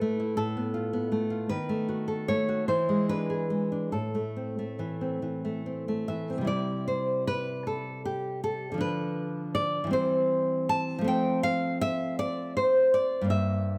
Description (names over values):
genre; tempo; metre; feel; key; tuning
romantic piece for solo classical guitar; 46-55 BPM (dotted quarters); 6/8; rubato; A minor, C major from 6.5 s; A4 = 437 Hz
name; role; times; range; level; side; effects
nylon-string guitar; solo; 0.0-13.8 s; G2 to A5; -29 LUFS; equal; none
room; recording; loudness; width
light reverb; close, detailed microphones; -29 LUFS; mono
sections
0.0-6.5 A section; 6.5-13.8 B section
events
none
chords
0.4 Asus2; 1.5 B7/D#; 2.7 E7; 3.9 Am; 6.5 C; 8.8 Bdim/D; 9.9 C/E; 11.1 F